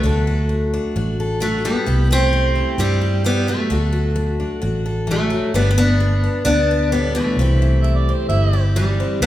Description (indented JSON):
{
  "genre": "honky-tonk and classic country",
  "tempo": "131 BPM",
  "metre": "4/4",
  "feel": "straight",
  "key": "unclear",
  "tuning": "A4 = 438 Hz",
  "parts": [
    { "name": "picked steel-string acoustic guitar", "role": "melody", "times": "0.0-9.3 s", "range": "E3 to D4", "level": "-20 LUFS", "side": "equal", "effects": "none" },
    { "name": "picked steel-string acoustic guitar", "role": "accompaniment", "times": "0.0-9.3 s", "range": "G2 to B4", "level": "-24 LUFS", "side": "left 3 dB", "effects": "none" },
    { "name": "vintage muted fingered electric bass", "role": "bass", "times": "0.0-9.3 s", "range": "G1 to G2", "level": "-18 LUFS", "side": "equal", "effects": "none" },
    { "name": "overdriven harmonica", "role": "second line", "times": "7.8-8.6 s", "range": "C5 to E5", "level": "-26 LUFS", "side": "right 4 dB", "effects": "none" }
  ],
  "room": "wet recital hall reverb, RT60 1.6 s",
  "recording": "recorded in a church or concert hall",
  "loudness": "-16 LUFS",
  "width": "side -13 dB against mid",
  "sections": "0.0-9.3 A section",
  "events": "none",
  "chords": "0.0 D; 1.9 C; 3.7 D; 5.5 G; 7.4 C"
}